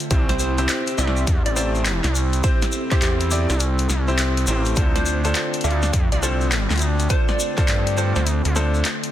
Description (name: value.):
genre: glitch hop.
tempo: 103 BPM.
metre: 4/4.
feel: swing 64% on 16ths.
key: D minor.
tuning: A4 = 440 Hz.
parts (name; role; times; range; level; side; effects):
warbly tape-like pad; sustained chords; 0.0-9.1 s; C3 to A4; -30 LUFS; left 2 dB; chorus, built-in reverb, vintage 12-bit sampler grit, sidechain pumping.
dubstep drum kit; drums; 0.0-9.1 s; handclaps, hi-hat, snare drum; -26 LUFS; left 1 dB; none.
shekere; percussion; 0.0-9.1 s; none; -31 LUFS; left 2 dB; none.
bright concert grand piano; stabs; 0.1-8.8 s; C4 to D5; -26 LUFS; equal; vintage 12-bit sampler grit, sidechain pumping, dub echo.
gritty driven synth bass; bass; 0.1-8.8 s; A1 to G2; -21 LUFS; equal; distortion, tube saturation.
electronic kick drum; drums; 0.1-7.7 s; none; -20 LUFS; equal; none.
plucky unison lead; melody; 0.3-8.2 s; G4 to F5; -30 LUFS; right 1 dB; phaser, dub echo.
room: light reverb.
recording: dense, heavily limited modern master.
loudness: -18 LUFS.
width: side -12 dB against mid.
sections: 0.0-9.1 A section.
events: none.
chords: 0.1 C; 4.8 Dm7.